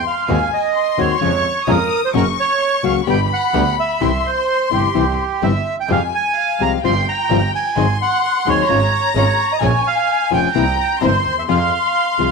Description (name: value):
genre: tango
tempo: 129 BPM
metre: 4/4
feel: rubato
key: unclear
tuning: A4 = 439 Hz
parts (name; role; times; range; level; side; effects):
- bandoneon; melody; 0.0-12.3 s; G4 to C6; -18 LUFS; right 7 dB; none
- rich chamber violin section; second line; 0.0-12.3 s; F5 to Eb6; -21 LUFS; left 12 dB; none
- flamenco guitar; accompaniment; 0.3-12.3 s; B2 to Ab4; -20 LUFS; left 11 dB; none
- clear studio string section; stabs; 0.3-12.3 s; Ab3 to Bb4; -30 LUFS; right 11 dB; none
- clear double bass; bass; 0.3-12.3 s; F1 to F2; -21 LUFS; right 3 dB; none
room: light reverb, studio reverb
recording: 1960s-style stereo with parts hard left and right, faint mains hum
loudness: -14 LUFS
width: side -4 dB against mid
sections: 0.0-12.3 A section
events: none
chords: 0.3 Ab7/Eb; 1.2 Db/F; 2.1 Gb; 3.1 G; 4.0 C; 5.9 Fmadd9; 6.8 Csus4/G; 7.8 Ab7; 8.7 Db/Ab; 9.6 Bbm7; 10.5 C7; 11.5 Fm